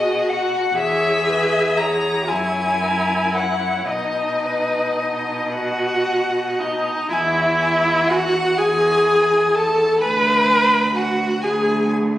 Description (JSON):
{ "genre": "classical, slow romantic movement for string quartet", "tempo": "36-43 BPM (dotted quarters)", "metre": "6/8", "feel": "rubato", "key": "B major, E major from 7.1 s", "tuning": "A4 = 440 Hz", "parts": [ { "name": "rich violin", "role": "melody", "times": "0.0-12.0 s", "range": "D#5 to A#5", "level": "-23 LUFS", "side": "left 4 dB", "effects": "none" }, { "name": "warm violin", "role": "second line", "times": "0.0-11.9 s", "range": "F#4 to B5", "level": "-26 LUFS", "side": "left 1 dB", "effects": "none" }, { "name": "warm viola", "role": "accompaniment", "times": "0.0-11.9 s", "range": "D#4 to B4", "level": "-18 LUFS", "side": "equal", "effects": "none" }, { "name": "rich cello", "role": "bass", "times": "0.0-12.2 s", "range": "D2 to B2", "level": "-26 LUFS", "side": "right 1 dB", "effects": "none" } ], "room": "moderate scoring stage reverb, RT60 2.2 s", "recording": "recorded on a phone in the room, studio reverb, compression", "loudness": "-16 LUFS", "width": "side -14 dB against mid", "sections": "0.0-7.1 A section; 7.1-12.2 B section", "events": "none", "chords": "0.0 G#m7/B; 0.8 C#m7/E; 2.3 F#7; 3.9 B; 7.1 E; 10.0 Bm6/D", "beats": "| 0.78 2.29 | 3.90 5.53 | 7.12 8.59 | 10.02 11.42" }